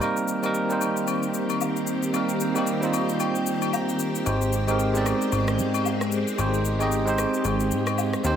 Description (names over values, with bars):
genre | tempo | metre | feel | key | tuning
amapiano | 113 BPM | 4/4 | swing 58% on 16ths | unclear | A4 = 440 Hz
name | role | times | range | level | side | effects
bell-like tine electric piano | accompaniment | 0.0-8.4 s | G3 to Bb5 | -25 LUFS | right 3 dB | none
string machine, violins | sustained chords | 0.0-8.4 s | Eb3 to G4 | -29 LUFS | left 2 dB | ensemble chorus
electronic shaker and rim click | drums | 0.0-8.4 s | none | -34 LUFS | left 4 dB | none
agogo bells and woodblock | percussion | 0.0-8.1 s | none | -33 LUFS | left 11 dB | none
plucky analog bass | bass | 4.3-8.4 s | Ab1 to Ab2 | -26 LUFS | left 1 dB | none
room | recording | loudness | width
light reverb | none | -22 LUFS | side -9 dB against mid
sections
0.0-8.4 A section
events
tine electric piano fill 2.7-4.3; kick muted 7.4-8.4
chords
0.0 Eb6; 4.3 Abmaj7